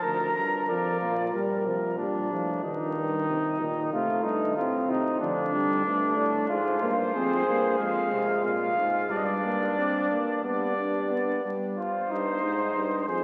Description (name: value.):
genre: classical, imitative canzona for brass ensemble.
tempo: 92 BPM.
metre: 4/4.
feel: straight.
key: C minor from 6.5 s.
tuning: A4 = 440 Hz.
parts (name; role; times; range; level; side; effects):
warm trumpet; melody; 0.0-1.3, 6.5-13.2 s; C5 to Bb5; -33 LUFS; equal; none.
warm flugelhorn; second line; 0.0-13.2 s; D4 to Bb4; -31 LUFS; equal; none.
mellow trombone; accompaniment; 0.0-11.8 s; Eb3 to D4; -33 LUFS; equal; none.
clear bass trombone; bass; 0.0-13.2 s; D2 to D3; -35 LUFS; equal; none.
room: wet cathedral reverb, RT60 4.2 s.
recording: very old 78 rpm record, vinyl crackle.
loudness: -27 LUFS.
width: mono.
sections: 0.0-1.3 A section; 1.3-11.8 B section; 11.8-13.2 C section.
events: none.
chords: 0.0 Bb/D; 1.3 Bb; 2.6 Eb/G; 3.9 Adim; 5.2 Dm; 6.5 Fm; 9.1 Gsus4; 10.4 G; 11.8 Cm.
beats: 0.04 0.69 | 1.34 1.99 2.64 3.28 | 3.92 4.57 5.21 5.86 | 6.50 7.15 7.79 8.45 | 9.11 9.78 10.44 11.11 | 11.78 12.43 13.08.